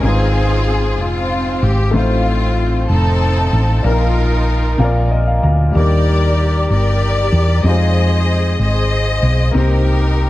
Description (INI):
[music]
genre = slow gospel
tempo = 63 BPM (dotted quarters)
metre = 6/8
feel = straight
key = unclear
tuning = A4 = 440 Hz
[part]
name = rich studio string section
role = melody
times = 0.0-10.3 s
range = C4 to Eb5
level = -19 LUFS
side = left 1 dB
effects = dub echo
[part]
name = warm grand piano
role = accompaniment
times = 0.0-10.3 s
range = Ab2 to Bb5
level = -20 LUFS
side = left 2 dB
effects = none
[part]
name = hollow-body short-scale fingered electric bass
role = bass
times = 0.0-10.3 s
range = F1 to F2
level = -14 LUFS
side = equal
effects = none
[sound]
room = light reverb, small room ambience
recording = echo-heavy mix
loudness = -13 LUFS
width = side -16 dB against mid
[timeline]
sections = 0.0-10.3 A section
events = grand piano fill 4.8-5.7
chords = 0.0 Ab6; 1.9 F7/A; 3.8 Bbsus4; 4.8 Bb; 5.7 Ebmaj7; 7.6 Fm7; 9.5 Cm7